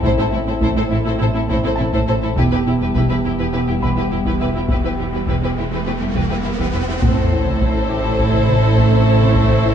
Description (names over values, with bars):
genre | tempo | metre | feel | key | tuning
cinematic, hybrid orchestral and electronic film score | 103 BPM | 4/4 | straight | A minor | A4 = 441 Hz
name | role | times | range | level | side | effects
warm symphonic violin section | second line | 0.0-9.7 s | E4 to A4 | -27 LUFS | left 5 dB | none
warm symphonic viola section | accompaniment | 0.0-9.7 s | E4 | -28 LUFS | right 3 dB | none
warm French horn section | sustained chords | 0.0-9.7 s | C3 to G4 | -25 LUFS | left 1 dB | none
harp-like synth pluck | arpeggios | 0.0-9.7 s | E3 to A4 | -26 LUFS | right 2 dB | chorus, digital delay
rich symphonic cello section | bass | 0.0-9.7 s | E2 to A2 | -23 LUFS | right 2 dB | none
rich symphonic double bass section | bass | 0.0-9.7 s | E1 to A1 | -22 LUFS | right 2 dB | none
warm sub bass | bass | 0.0-9.7 s | E1 to A1 | -26 LUFS | left 1 dB | none
solo taiko drums | drums | 0.0-9.7 s | none | -24 LUFS | left 1 dB | none
bright concert grand piano | texture | 0.0-9.7 s | E4 to B5 | -34 LUFS | left 2 dB | digital delay
rich symphonic violin section | melody | 0.1-9.7 s | G4 to C5 | -26 LUFS | left 2 dB | none
riser and sub drop | sound effects | 4.5-9.4 s | none | -25 LUFS | equal | none
warm trombone section | sustained chords | 7.0-9.7 s | E3 to A3 | -24 LUFS | right 3 dB | none
room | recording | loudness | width
moderate scoring stage reverb, RT60 1.4 s | small room ambience | -15 LUFS | side -8 dB against mid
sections
0.0-7.0 A section; 7.0-9.7 B section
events
riser 4.5-7.0; impact 7.0-9.4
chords
0.0 Am; 2.4 Em; 7.0 Am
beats
| 0.04 0.62 1.20 1.78 | 2.37 2.95 3.53 4.11 | 4.70 5.28 5.86 6.44 | 7.03 7.61 8.19 8.77 | 9.36